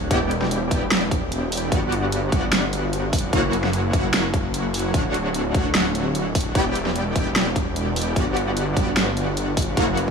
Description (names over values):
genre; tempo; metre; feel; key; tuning
future bass; 149 BPM; 4/4; half-time; unclear; A4 = 439 Hz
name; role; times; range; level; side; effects
supersaw stab; riff; 0.0-10.1 s; A3 to G5; -25 LUFS; equal; cassette tape, sidechain pumping, digital delay
wide detuned saw bass; bass; 0.0-10.1 s; D1 to G1; -24 LUFS; equal; chorus, sidechain pumping
big-room dance drum kit; drums; 0.1-10.1 s; hi-hat, snare drum; -26 LUFS; right 1 dB; overdrive, studio reverb
electronic kick drum; drums; 0.1-10.1 s; none; -23 LUFS; equal; overdrive, studio reverb
room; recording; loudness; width
light reverb; studio ambience; -19 LUFS; side -6 dB against mid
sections
0.0-10.1 A section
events
none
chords
0.1 Em7; 1.7 Gmaj7; 3.3 F#7; 4.9 Dmaj7; 6.6 Em7; 8.2 Gmaj7